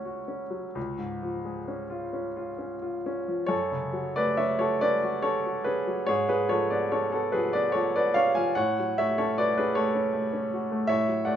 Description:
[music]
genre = classical, romantic nocturne for solo piano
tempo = 43-53 BPM (dotted quarters)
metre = 12/8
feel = rubato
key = F# minor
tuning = A4 = 439 Hz
[part]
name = clear baby grand piano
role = solo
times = 0.0-11.4 s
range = C#2 to G#5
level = -25 LUFS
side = equal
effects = none
[sound]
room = wet large studio reverb, RT60 1.1 s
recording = heard from further back in the room, nothing above 7.6 kHz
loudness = -25 LUFS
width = side -9 dB against mid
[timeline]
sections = 0.0-11.4 A section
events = none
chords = 0.0 F#m/C#; 0.8 C#; 3.5 F#m; 6.1 C#7/G#; 8.6 F#m/A

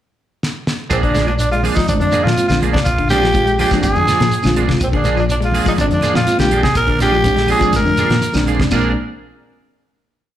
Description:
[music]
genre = afrobeat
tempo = 123 BPM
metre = 4/4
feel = straight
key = Bb mixolydian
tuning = A4 = 442 Hz
[part]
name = damped 70s drum kit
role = drums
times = 0.4-8.8 s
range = crash cymbal, hi-hat, kick drum, snare drum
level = -21 LUFS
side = equal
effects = none
[part]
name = raspy tenor saxophone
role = melody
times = 0.9-8.9 s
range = C4 to Bb4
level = -17 LUFS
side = equal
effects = slapback echo
[part]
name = clean electric guitar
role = stabs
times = 0.9-8.9 s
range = F3 to Ab4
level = -22 LUFS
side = right 8 dB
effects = analog chorus, slapback echo
[part]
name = deep dub fingered electric bass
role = bass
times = 0.9-8.9 s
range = Ab1 to Bb2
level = -19 LUFS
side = equal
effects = none
[part]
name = claves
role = percussion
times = 0.9-8.8 s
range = none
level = -35 LUFS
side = right 1 dB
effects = none
[part]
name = shekere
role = percussion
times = 0.9-8.8 s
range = none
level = -26 LUFS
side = right 2 dB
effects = none
[part]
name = semi-hollow electric guitar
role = arpeggios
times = 1.0-8.9 s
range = Bb2 to Ab3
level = -22 LUFS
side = left 7 dB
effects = none
[part]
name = congas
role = percussion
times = 1.1-8.8 s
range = none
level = -26 LUFS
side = left 1 dB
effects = none
[part]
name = mellow reed electric piano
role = accompaniment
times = 1.9-8.9 s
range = Ab3 to F4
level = -22 LUFS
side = right 2 dB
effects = fast tremolo, slapback echo
[sound]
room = small room reverb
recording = live gig heard through the venue's PA, club reverb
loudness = -13 LUFS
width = side -11 dB against mid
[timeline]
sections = 0.0-0.9 pickup bar; 0.9-8.7 groove; 8.7-10.4 final chord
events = drum fill 0.4-0.9, 7.7-8.7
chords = 0.0 N.C.; 0.9 Bb7

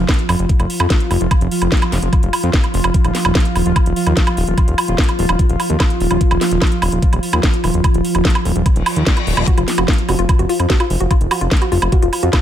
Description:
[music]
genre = psychedelic trance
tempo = 147 BPM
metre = 4/4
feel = straight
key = unclear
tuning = A4 = 441 Hz
[part]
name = pulsing gated texture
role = sustained chords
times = 0.0-12.4 s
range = F3 to F4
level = -20 LUFS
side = right 1 dB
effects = chorus, built-in reverb, sidechain pumping
[part]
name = fat analog bass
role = bass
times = 0.0-12.3 s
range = Eb1 to F2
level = -17 LUFS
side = equal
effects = none
[part]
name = electronic kick drum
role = drums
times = 0.1-12.4 s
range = none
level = -15 LUFS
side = equal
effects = none
[part]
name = garage drum kit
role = drums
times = 0.1-12.4 s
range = hi-hat, snare drum, woodblock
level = -20 LUFS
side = right 2 dB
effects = none
[part]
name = reverse cymbal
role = sound effects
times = 8.8-9.5 s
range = none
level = -25 LUFS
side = left 6 dB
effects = none
[part]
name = woody wave-folded pluck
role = riff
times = 9.5-12.4 s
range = F4 to Gb4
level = -21 LUFS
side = left 1 dB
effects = chorus, auto-pan, sidechain pumping, ping-pong delay
[sound]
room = digital ambience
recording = none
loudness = -13 LUFS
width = side -11 dB against mid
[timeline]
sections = 0.0-12.4 A section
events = reverse cymbal 8.8-9.5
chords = 0.0 N.C.; 2.9 Ebsus2; 9.5 F5

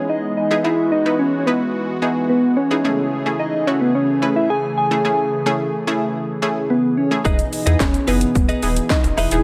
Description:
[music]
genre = dance-pop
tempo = 109 BPM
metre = 4/4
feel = straight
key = E major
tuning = A4 = 440 Hz
[part]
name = soft struck synth lead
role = melody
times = 0.0-9.4 s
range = B3 to G#4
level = -21 LUFS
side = equal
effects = chorus, digital delay
[part]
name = analog pluck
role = accompaniment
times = 0.0-9.4 s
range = A3 to B4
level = -25 LUFS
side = equal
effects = chorus, sidechain pumping
[part]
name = warm analog pad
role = sustained chords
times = 0.0-9.4 s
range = B2 to G#4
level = -28 LUFS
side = equal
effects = chorus, sidechain pumping
[part]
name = direct-recorded clean electric guitar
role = riff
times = 7.2-9.4 s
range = D#4 to D#5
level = -30 LUFS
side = equal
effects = analog chorus
[part]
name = saturated sub bass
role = bass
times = 7.3-9.4 s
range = D#1 to E2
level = -23 LUFS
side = equal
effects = sidechain pumping
[part]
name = house drum kit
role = drums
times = 7.3-9.4 s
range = handclaps, hi-hat, kick drum, shaker, snare drum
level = -22 LUFS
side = equal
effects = overdrive
[sound]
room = light reverb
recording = none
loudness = -19 LUFS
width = mono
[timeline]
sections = 0.0-9.4 A section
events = none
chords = 0.0 Emaj7; 2.8 Amaj7; 7.3 Emaj7

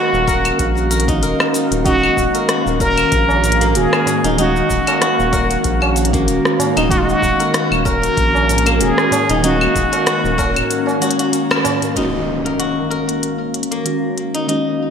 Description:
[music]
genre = organic downtempo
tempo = 95 BPM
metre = 4/4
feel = swing 55% on 16ths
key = Eb minor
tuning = A4 = 440 Hz
[part]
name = trumpet with plunger mute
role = melody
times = 0.0-11.3 s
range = F4 to Bb4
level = -19 LUFS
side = equal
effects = ping-pong delay
[part]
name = muted felt-like synth keys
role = accompaniment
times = 0.0-14.9 s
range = Eb3 to Gb4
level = -23 LUFS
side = right 2 dB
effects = chorus, sidechain pumping, ping-pong delay
[part]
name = ethereal airy pad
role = sustained chords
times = 0.0-14.9 s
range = Eb3 to F5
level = -21 LUFS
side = left 1 dB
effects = ensemble chorus, built-in reverb, sidechain pumping
[part]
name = steel-string zither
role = arpeggios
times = 0.0-14.9 s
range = Bb3 to Bb4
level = -22 LUFS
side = left 2 dB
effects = low-pass filter, ping-pong delay
[part]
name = round analog bass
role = bass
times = 0.1-10.6 s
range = Eb1 to Bb1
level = -20 LUFS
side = equal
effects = none
[part]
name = organic electronic drum kit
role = drums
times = 0.1-14.6 s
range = claves, hi-hat, rim click, shaker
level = -21 LUFS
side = left 1 dB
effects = none
[part]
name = electronic kick drum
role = drums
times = 0.3-10.5 s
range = none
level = -23 LUFS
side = equal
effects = none
[part]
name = tabla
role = percussion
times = 2.8-11.9 s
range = none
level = -26 LUFS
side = right 4 dB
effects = none
[part]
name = impact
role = sound effects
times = 12.0-14.5 s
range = none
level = -29 LUFS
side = equal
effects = none
[sound]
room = wet plate reverb, RT60 2.1 s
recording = dreamy mix soaked in reverb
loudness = -13 LUFS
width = side -7 dB against mid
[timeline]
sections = 0.0-12.0 A section; 12.0-14.9 B section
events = band accent 11.5-11.8; impact 12.0-14.5; filter sweep on ambient pad 12.0-14.9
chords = 0.0 Ebm7

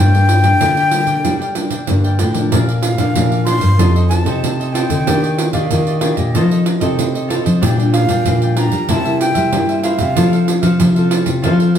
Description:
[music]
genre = samba and choro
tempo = 94 BPM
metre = 4/4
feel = straight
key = Bb major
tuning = A4 = 441 Hz
[part]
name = breathy jazz flute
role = melody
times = 0.0-10.8 s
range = Eb5 to C6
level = -20 LUFS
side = left 2 dB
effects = none
[part]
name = cavaquinho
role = accompaniment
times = 0.0-11.8 s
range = D4 to G5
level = -26 LUFS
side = right 2 dB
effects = none
[part]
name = nylon-string guitar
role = accompaniment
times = 0.0-11.8 s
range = G2 to A4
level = -20 LUFS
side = left 1 dB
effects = none
[part]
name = nylon-string guitar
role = bass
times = 0.0-11.8 s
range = F2 to G3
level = -15 LUFS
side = left 1 dB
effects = none
[part]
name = pandeiro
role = percussion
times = 0.1-11.8 s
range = none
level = -20 LUFS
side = right 4 dB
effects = none
[sound]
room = wet studio reverb, RT60 0.8 s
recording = heard from further back in the room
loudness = -12 LUFS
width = side -9 dB against mid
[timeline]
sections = 0.0-2.5 A section; 2.5-11.8 B section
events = none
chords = 0.0 Gm; 2.5 Bb; 3.8 F7; 5.1 Ebmaj7; 6.3 F7; 7.6 Bb6; 8.9 C7; 10.2 F

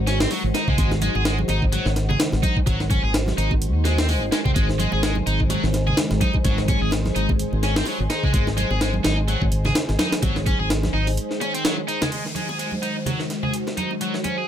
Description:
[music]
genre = breakbeat, breaks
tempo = 127 BPM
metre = 4/4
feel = swing 57% on 16ths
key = unclear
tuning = A4 = 440 Hz
[part]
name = phased analog pad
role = sustained chords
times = 0.0-14.5 s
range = D#3 to B#4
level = -28 LUFS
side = equal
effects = phaser, chorus, sidechain pumping
[part]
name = fingered electric bass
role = bass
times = 0.0-11.2 s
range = G#1 to D#2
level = -23 LUFS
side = equal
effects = none
[part]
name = high-gain distorted guitar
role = riff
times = 0.1-14.5 s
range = F#3 to G#4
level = -26 LUFS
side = equal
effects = distortion, tube saturation, vintage 12-bit sampler grit, low-pass filter, ping-pong delay
[part]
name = breakbeat sampler-style drum kit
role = drums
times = 0.1-14.4 s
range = hi-hat, kick drum, snare drum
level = -23 LUFS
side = equal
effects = high-pass filter on kick, small room ambience, high-pass filter on hats, high-pass filter on snare
[part]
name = bongos and congas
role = percussion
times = 0.3-14.4 s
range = none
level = -30 LUFS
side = right 2 dB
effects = none
[part]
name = downlifter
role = sound effects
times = 12.1-14.5 s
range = none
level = -36 LUFS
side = equal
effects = none
[sound]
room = light reverb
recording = none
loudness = -19 LUFS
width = side -10 dB against mid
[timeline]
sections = 0.0-12.1 A section; 12.1-14.5 B section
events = none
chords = 0.0 G#7

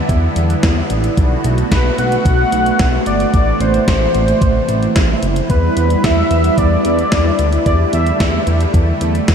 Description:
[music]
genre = synth-pop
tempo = 111 BPM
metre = 4/4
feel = straight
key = E minor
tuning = A4 = 441 Hz
[part]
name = phased analog pad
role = sustained chords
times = 0.0-9.3 s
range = C3 to F#4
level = -18 LUFS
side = right 1 dB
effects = phaser, chorus
[part]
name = chorused synth bass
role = bass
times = 0.1-9.3 s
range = F#1 to E2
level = -17 LUFS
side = equal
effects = none
[part]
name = gated 80s digital drum machine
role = drums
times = 0.1-9.3 s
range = hi-hat, kick drum, snare drum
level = -18 LUFS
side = equal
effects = gated reverb, gated reverb snare
[part]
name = octave-doubled lead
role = melody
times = 1.7-8.4 s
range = B4 to F#5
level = -19 LUFS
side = equal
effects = chorus, ping-pong delay
[sound]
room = wet huge ambient reverb, RT60 7.3 s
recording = dreamy mix soaked in reverb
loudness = -12 LUFS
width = side -7 dB against mid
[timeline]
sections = 0.0-9.3 A section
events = none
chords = 0.0 Em7; 1.2 Bm7; 3.3 Am; 5.5 Em7

